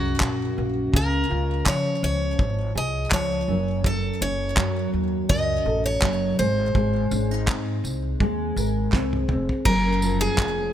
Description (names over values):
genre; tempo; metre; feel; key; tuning
acoustic pop; 83 BPM; 4/4; swing 55% on 16ths; unclear; A4 = 444 Hz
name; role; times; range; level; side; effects
picked steel-string acoustic guitar; melody; 0.0-10.7 s; Gb4 to Eb5; -26 LUFS; equal; digital delay
nylon-string guitar; accompaniment; 0.0-10.7 s; Gb2 to Bb4; -26 LUFS; equal; double-tracked left and right
upright bass; bass; 0.0-10.7 s; F1 to Db3; -27 LUFS; equal; none
cloth-damped thuddy drum kit; drums; 0.2-10.6 s; crash cymbal, handclaps, kick drum, snare drum, tambourine, toms; -24 LUFS; equal; none
group handclap; percussion; 0.2-10.6 s; none; -36 LUFS; right 7 dB; none
room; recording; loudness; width
small room reverb; none; -21 LUFS; side -11 dB against mid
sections
0.0-9.7 A section; 9.7-10.7 B section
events
drum fill 8.9-9.7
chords
0.0 Gb; 0.9 Db6; 3.5 Gbm; 6.4 Abadd9; 9.7 Gbmaj7